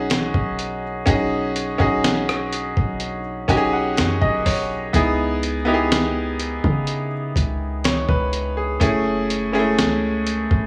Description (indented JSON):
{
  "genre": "contemporary R&B",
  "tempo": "62 BPM",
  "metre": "4/4",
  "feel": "straight",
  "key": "B major",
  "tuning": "A4 = 440 Hz",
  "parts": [
    { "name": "bright baby grand piano", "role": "accompaniment", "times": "0.0-10.7 s", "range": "G#3 to G#5", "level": "-23 LUFS", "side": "equal", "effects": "none" },
    { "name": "warm 808-style bass", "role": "bass", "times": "0.0-10.7 s", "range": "F#1 to C#3", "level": "-29 LUFS", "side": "equal", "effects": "none" },
    { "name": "dusty soul sampler-style drum kit", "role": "drums", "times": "0.1-10.7 s", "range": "hi-hat, kick drum, rim click, snare drum", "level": "-24 LUFS", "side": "equal", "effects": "none" }
  ],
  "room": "light reverb",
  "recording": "small room ambience",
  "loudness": "-21 LUFS",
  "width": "mono",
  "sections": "0.0-10.7 A section",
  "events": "grand piano fill 3.0-4.9",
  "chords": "0.0 B6; 4.9 C#m7; 8.8 F#m7",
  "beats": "0.10 | 1.07 2.03 3.00 3.97 | 4.94 5.91 6.87 7.84 | 8.81 9.78"
}